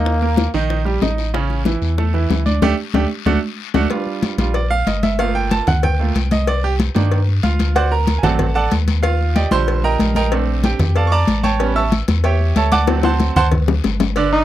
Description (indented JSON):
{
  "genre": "latin, salsa",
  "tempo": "187 BPM",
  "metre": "4/4",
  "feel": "straight",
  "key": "G minor",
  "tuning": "A4 = 440 Hz",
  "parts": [
    { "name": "brilliant trombone", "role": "melody", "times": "0.0-0.5, 14.3-14.4 s", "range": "Bb3 to Eb4", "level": "-18 LUFS", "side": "left 1 dB", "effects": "none" },
    { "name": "bright baby grand piano", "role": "accompaniment", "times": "0.0-14.4 s", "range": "C#3 to E6", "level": "-19 LUFS", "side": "right 6 dB", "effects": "none" },
    { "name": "pure sine sub bass", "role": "bass", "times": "0.0-14.4 s", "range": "G1 to G2", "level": "-18 LUFS", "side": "equal", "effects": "none" },
    { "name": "bongos and cowbell", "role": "percussion", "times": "0.1-14.3 s", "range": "none", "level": "-24 LUFS", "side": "left 9 dB", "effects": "none" },
    { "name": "congas", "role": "percussion", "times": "0.1-14.4 s", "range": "none", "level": "-21 LUFS", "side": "left 2 dB", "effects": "none" },
    { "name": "guiro", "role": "percussion", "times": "0.1-14.4 s", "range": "none", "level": "-32 LUFS", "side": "left 22 dB", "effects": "none" }
  ],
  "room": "little or no reverb",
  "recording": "dry, close 1970s-style studio recording",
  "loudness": "-15 LUFS",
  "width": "side -13 dB against mid",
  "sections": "0.0-3.9 A section; 3.9-14.2 B section",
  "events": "band accent 2.6-3.9; grand piano solo 3.9-14.2; drum fill 12.9-14.2",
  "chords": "0.1 Eb; 1.3 A; 2.6 Dsus4; 3.3 D; 3.9 Gm7; 6.5 Cm7; 7.8 D7; 9.0 Ebmaj7; 10.3 Bbmaj7; 11.6 A7; 12.9 D7",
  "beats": "| 0.06 0.38 0.70 1.02 | 1.34 1.66 1.98 2.30 | 2.62 2.94 3.27 3.59 | 3.91 4.23 4.55 4.87 | 5.19 5.51 5.83 6.15 | 6.47 6.79 7.12 7.44 | 7.76 8.08 8.40 8.72 | 9.04 9.36 9.68 10.00 | 10.32 10.64 10.96 11.28 | 11.60 11.92 12.24 12.56 | 12.88 13.21 13.53 13.85 | 14.17"
}